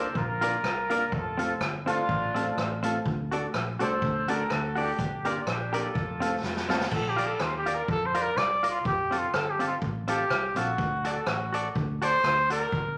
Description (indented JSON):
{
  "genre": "ska",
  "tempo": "124 BPM",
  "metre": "4/4",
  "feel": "swing 55% on 8ths",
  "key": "Bb major",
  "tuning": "A4 = 440 Hz",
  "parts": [
    { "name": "clear horn section", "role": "melody", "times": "0.0-6.7 s", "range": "D4 to C5", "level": "-33 LUFS", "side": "equal", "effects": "none" },
    { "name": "semi-hollow electric guitar", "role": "accompaniment", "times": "0.0-12.7 s", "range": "C4 to D5", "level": "-34 LUFS", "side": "equal", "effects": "slapback echo" },
    { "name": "dark upright piano", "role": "stabs", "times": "0.0-6.8 s", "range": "A3 to Bb4", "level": "-36 LUFS", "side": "equal", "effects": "none" },
    { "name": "fingered electric bass", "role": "bass", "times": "0.0-13.0 s", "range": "F1 to F2", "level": "-38 LUFS", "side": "equal", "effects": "none" },
    { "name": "swinging big-band drum kit", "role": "drums", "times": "0.2-12.8 s", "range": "crash cymbal, hi-hat, kick drum, rim click, snare drum", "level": "-35 LUFS", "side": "equal", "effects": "none" },
    { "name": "warm trumpet", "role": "melody", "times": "6.9-13.0 s", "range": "F4 to D5", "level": "-30 LUFS", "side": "equal", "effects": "none" }
  ],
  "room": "wet large studio reverb, RT60 0.9 s",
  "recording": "vinyl crackle",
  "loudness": "-28 LUFS",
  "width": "mono",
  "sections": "0.0-6.9 A section; 6.9-13.0 B section",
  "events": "drum fill 6.4-6.9; trumpet solo 6.9-13.0",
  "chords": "0.0 Bb; 1.1 F; 3.1 D; 5.0 Gm; 6.0 F; 6.9 Bb; 8.9 F; 10.8 D"
}